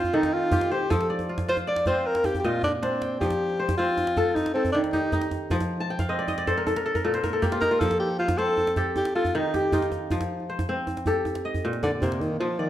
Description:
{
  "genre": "west african traditional, West African string and xylophone music",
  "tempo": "104 BPM (dotted quarters)",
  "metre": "12/8",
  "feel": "straight",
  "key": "F mixolydian",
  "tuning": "A4 = 441 Hz",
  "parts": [
    { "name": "breathy tenor saxophone", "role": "melody", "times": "0.0-12.7 s", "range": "C3 to D5", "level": "-25 LUFS", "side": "equal", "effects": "slapback echo" },
    { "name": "kora", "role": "arpeggios", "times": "0.0-12.7 s", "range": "Bb2 to A5", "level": "-27 LUFS", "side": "equal", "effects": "none" },
    { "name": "djembe", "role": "percussion", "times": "0.0-12.3 s", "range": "none", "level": "-30 LUFS", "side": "right 1 dB", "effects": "none" }
  ],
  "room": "moderate recital hall reverb, RT60 1.5 s",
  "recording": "dark, warm production",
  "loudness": "-23 LUFS",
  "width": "side -12 dB against mid",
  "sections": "0.0-3.2 A section; 3.2-12.4 B section",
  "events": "tenor saxophone solo 0.0-3.2; drum fill 2.4-3.2; kora fill 5.8-7.8",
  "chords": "0.0 Eb; 0.9 F5; 2.1 Bb; 3.2 F; 4.4 Eb; 5.5 F; 6.7 N.C.; 7.8 F; 9.0 Eb; 10.1 F; 11.3 Bb"
}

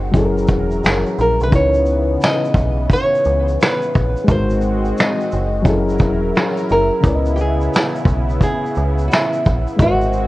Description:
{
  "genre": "lo-fi hip hop",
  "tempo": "87 BPM",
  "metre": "4/4",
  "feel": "swing 65% on 16ths",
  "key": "C# dorian",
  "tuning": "A4 = 440 Hz",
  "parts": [
    { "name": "reed electric piano", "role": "accompaniment", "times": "0.0-10.3 s", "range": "C#3 to D#5", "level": "-21 LUFS", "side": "left 2 dB", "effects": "low-pass filter" },
    { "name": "lush unison pad", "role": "sustained chords", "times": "0.0-10.3 s", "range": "C#3 to A#4", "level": "-25 LUFS", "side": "equal", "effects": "chorus, low-pass filter" },
    { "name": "metallic FM bass", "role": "bass", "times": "0.0-10.3 s", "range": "E1 to C#2", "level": "-20 LUFS", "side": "equal", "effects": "none" },
    { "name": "vintage brush drum kit", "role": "drums", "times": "0.1-10.3 s", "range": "finger snaps, hi-hat, kick drum, shaker, snare drum", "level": "-17 LUFS", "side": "equal", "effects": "none" },
    { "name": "flamenco guitar", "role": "melody", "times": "1.2-10.3 s", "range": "E4 to D#5", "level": "-19 LUFS", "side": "equal", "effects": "low-pass filter, analog delay" }
  ],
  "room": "light reverb",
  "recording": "cassette tape",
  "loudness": "-14 LUFS",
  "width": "side -18 dB against mid",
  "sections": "0.0-10.3 A section",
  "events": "none",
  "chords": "0.1 F#7; 1.5 C#m7; 4.3 G#7; 5.7 F#7; 7.0 C#m7"
}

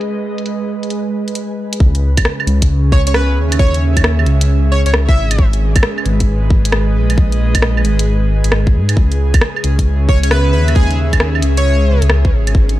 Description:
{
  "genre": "future garage",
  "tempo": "134 BPM",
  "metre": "4/4",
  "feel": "swing 66% on 16ths",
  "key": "C# minor",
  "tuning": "A4 = 439 Hz",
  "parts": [
    { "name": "airy breathy pad", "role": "sustained chords", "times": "0.0-12.8 s", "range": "C#3 to E5", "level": "-21 LUFS", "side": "right 2 dB", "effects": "chorus, sidechain pumping" },
    { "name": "garage drum kit", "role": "drums", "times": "0.0-12.8 s", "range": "claves, hi-hat, rim click", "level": "-18 LUFS", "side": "right 1 dB", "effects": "studio reverb" },
    { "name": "backwards swelling texture", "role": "texture", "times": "0.0-1.8 s", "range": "G#3 to G#4", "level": "-31 LUFS", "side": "left 5 dB", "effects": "built-in reverb" },
    { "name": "dark detuned saw bass", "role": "bass", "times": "1.8-12.8 s", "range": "G#1 to G#2", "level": "-13 LUFS", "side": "equal", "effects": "sidechain pumping" },
    { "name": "electronic kick drum", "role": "drums", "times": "1.8-12.7 s", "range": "none", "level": "-12 LUFS", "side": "equal", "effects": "studio reverb" },
    { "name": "plucky unison lead", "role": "melody", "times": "2.9-5.4, 10.1-12.0 s", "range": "G#4 to E5", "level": "-21 LUFS", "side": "right 1 dB", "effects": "tape echo" }
  ],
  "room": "little or no reverb",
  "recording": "dark, warm production, low-pass filter",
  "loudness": "-11 LUFS",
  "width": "side -15 dB against mid",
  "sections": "0.0-1.8 A section; 1.8-12.8 B section",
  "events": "filter sweep 0.0-1.8",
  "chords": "0.0 G#m; 1.8 C#m; 5.4 G#m; 9.0 C#m"
}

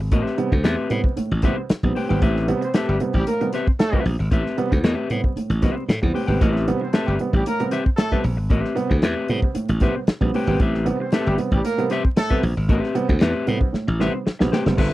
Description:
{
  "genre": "funk",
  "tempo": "115 BPM",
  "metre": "4/4",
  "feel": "straight",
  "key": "unclear",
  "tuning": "A4 = 440 Hz",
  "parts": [
    { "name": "clean electric guitar", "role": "accompaniment", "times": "0.0-14.9 s", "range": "C4 to G5", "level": "-25 LUFS", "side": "left 4 dB", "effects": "none" },
    { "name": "glassy slap bass", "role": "bass", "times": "0.0-14.9 s", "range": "F#1 to A2", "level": "-22 LUFS", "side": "equal", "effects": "none" },
    { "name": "warm upright piano", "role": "stabs", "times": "0.1-14.9 s", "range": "G2 to B3", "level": "-25 LUFS", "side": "right 3 dB", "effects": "slapback echo" },
    { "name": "warm soul drum kit", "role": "drums", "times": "0.1-14.9 s", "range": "crash cymbal, hi-hat, kick drum, snare drum", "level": "-20 LUFS", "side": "equal", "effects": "none" },
    { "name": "warm horn section", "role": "second line", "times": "2.6-12.4 s", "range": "G3 to C5", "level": "-25 LUFS", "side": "right 1 dB", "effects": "none" }
  ],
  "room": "light reverb",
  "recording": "dry, close 1970s-style studio recording, vinyl crackle",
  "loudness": "-18 LUFS",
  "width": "side -16 dB against mid",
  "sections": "0.0-14.8 A section",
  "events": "drum fill 13.7-14.8",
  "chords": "0.0 Am9"
}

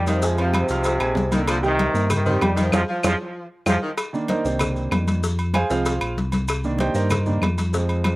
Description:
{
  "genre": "latin, salsa",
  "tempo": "192 BPM",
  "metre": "4/4",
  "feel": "straight",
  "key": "C minor",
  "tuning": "A4 = 440 Hz",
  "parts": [
    { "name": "clear trombone section", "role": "melody", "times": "0.0-3.7 s", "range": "Ab2 to G3", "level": "-24 LUFS", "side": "equal", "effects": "slapback echo" },
    { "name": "clear concert grand piano", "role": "accompaniment", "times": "0.0-8.2 s", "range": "Eb3 to Ab6", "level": "-25 LUFS", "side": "right 2 dB", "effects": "none" },
    { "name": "sub bass with octave", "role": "bass", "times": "0.0-8.1 s", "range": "Bb1 to G2", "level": "-23 LUFS", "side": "equal", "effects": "none" },
    { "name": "clear saxophone section", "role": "second line", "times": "0.1-3.9 s", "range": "Eb3 to F3", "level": "-27 LUFS", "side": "equal", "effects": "slapback echo" },
    { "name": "agogo bells and timbales", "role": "percussion", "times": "0.1-8.2 s", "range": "none", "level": "-30 LUFS", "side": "right 2 dB", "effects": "none" },
    { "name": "congas", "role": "percussion", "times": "0.1-8.2 s", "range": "none", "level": "-26 LUFS", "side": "left 1 dB", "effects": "none" },
    { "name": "cowbell", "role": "percussion", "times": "0.1-8.2 s", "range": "none", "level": "-32 LUFS", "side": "left 4 dB", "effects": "none" },
    { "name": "maracas", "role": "percussion", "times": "0.1-8.2 s", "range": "none", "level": "-39 LUFS", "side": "left 2 dB", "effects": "none" },
    { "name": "claves", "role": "percussion", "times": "0.5-8.2 s", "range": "none", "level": "-33 LUFS", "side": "left 2 dB", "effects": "none" }
  ],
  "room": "little or no reverb",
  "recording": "recorded outdoors, with no room sound",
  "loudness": "-19 LUFS",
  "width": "side -19 dB against mid",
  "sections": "0.0-4.0 A section; 4.0-8.2 B section",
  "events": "drum fill 2.7-4.0; band accent 2.7-4.0; grand piano solo 4.0-8.2",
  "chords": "0.2 Fm; 1.5 Cm7; 2.7 Fm; 4.0 Cm7; 5.2 Fm; 6.5 Cm7"
}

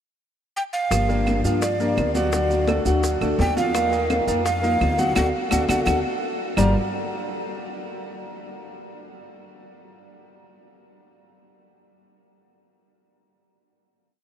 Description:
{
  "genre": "latin, Cuban son and guajira",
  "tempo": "170 BPM",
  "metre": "4/4",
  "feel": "straight",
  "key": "G minor",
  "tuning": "A4 = 445 Hz",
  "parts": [
    { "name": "breathy mellow tenor recorder", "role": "melody", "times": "0.6-6.7 s", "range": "D5 to Bb5", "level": "-26 LUFS", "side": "right 1 dB", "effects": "none" },
    { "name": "fingerpicked steel-string acoustic guitar", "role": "accompaniment", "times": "0.9-6.7 s", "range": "G2 to Bb4", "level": "-28 LUFS", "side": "left 4 dB", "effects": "none" },
    { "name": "warm concert grand piano", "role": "arpeggios", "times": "0.9-6.7 s", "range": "F3 to F#5", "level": "-27 LUFS", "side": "right 3 dB", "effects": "none" },
    { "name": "upright bass", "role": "bass", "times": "0.9-6.7 s", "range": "G1 to G2", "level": "-25 LUFS", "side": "equal", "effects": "none" },
    { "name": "bongos", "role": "percussion", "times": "0.9-6.7 s", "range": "none", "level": "-34 LUFS", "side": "left 8 dB", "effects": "none" },
    { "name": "claves", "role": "percussion", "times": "0.9-6.7 s", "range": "none", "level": "-35 LUFS", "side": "right 6 dB", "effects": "none" },
    { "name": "congas", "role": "percussion", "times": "0.9-6.7 s", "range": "none", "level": "-29 LUFS", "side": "left 1 dB", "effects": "none" },
    { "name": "maracas", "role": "percussion", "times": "0.9-6.7 s", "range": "none", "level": "-37 LUFS", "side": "right 5 dB", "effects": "none" }
  ],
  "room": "wet huge ambient reverb, RT60 8.2 s",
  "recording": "in a vast, echoing space",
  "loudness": "-20 LUFS",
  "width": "side -9 dB against mid",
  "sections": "0.0-0.9 pickup bar; 0.9-6.6 verse; 6.6-8.0 final chord",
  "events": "band accent 5.2-6.6; drum fill 5.5-6.6",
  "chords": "0.0 N.C.; 0.9 Gm7; 2.3 D; 3.7 Ebsus2; 5.2 D; 6.6 Gm7"
}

